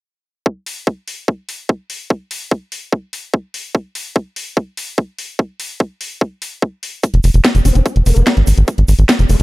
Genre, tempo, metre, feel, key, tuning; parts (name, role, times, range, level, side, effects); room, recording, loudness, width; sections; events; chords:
psychedelic trance; 146 BPM; 4/4; straight; F minor; A4 = 440 Hz
electronic kick drum; drums; 0.5-9.2 s; -15 LUFS; equal; overdrive, high-pass filter on kick
drum and bass drum kit; drums; 0.7-9.4 s; hi-hat, snare drum; -20 LUFS; equal; overdrive
egg shaker; percussion; 7.0-9.4 s; -32 LUFS; right 5 dB
tight sequencer bass; bass; 7.1-9.4 s; F1 to Ab1; -11 LUFS; equal; tube saturation
vowel-sweep wobble bass; second line; 7.7-9.4 s; Ab3 to C4; -25 LUFS; left 4 dB; analog chorus, cassette tape, sidechain pumping, high-pass filter, tape echo
digital ambience; dark, warm production; -15 LUFS; side -20 dB against mid
0.5-9.4 A section
0.5 Fm